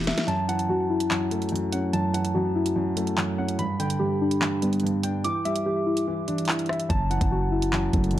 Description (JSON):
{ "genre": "hip hop, drill", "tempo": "145 BPM", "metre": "4/4", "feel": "half-time", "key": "F# phrygian", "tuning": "A4 = 441 Hz", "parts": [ { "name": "muted felt-like synth keys", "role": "arpeggios", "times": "0.0-8.2 s", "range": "E3 to D6", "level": "-26 LUFS", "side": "left 2 dB", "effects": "chorus, low-pass filter, tape echo" }, { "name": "growling 808-style bass", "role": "bass", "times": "0.0-0.1, 6.9-8.2 s", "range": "E1 to F#1", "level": "-27 LUFS", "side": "equal", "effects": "none" }, { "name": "drill drum kit", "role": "drums", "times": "0.0-8.2 s", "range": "handclaps, hi-hat, kick drum, rim click, snare drum", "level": "-28 LUFS", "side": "equal", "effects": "none" }, { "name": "dark concert grand piano", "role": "accompaniment", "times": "0.3-8.2 s", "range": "F#2 to E4", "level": "-27 LUFS", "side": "right 2 dB", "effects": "low-pass filter" } ], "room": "light reverb", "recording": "dark, warm production", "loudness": "-23 LUFS", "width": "side -13 dB against mid", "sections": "0.0-8.2 A section", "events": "drum fill 0.0; kick muted 0.3-6.9", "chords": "0.3 F#m7; 3.6 G; 5.2 Em7; 6.9 F#m7" }